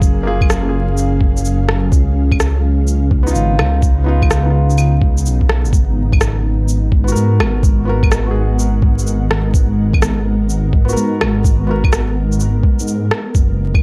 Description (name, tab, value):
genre	future garage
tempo	126 BPM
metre	4/4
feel	swing 66% on 16ths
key	G# dorian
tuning	A4 = 441 Hz
part	felt-muted upright piano	accompaniment	0.0-12.1 s	A#3 to A#4	-26 LUFS	equal	sidechain pumping, delay
part	ethereal airy pad	sustained chords	0.0-13.8 s	C#3 to F#5	-24 LUFS	equal	ensemble chorus, built-in reverb, vintage 12-bit sampler grit, sidechain pumping
part	dark detuned saw bass	bass	0.0-13.8 s	F#1 to G#2	-18 LUFS	equal	tube saturation, sidechain pumping
part	electronic kick drum	drums	0.0-13.8 s	none	-16 LUFS	equal	overdrive
part	electronic shaker, claves and rim click	drums	0.0-13.8 s	none	-24 LUFS	equal	none
room	light reverb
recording	dark, warm production, vinyl crackle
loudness	-15 LUFS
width	mono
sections	0.0-13.8 A section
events	none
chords	0.0 F#maj7; 1.9 C#9; 5.7 G#m7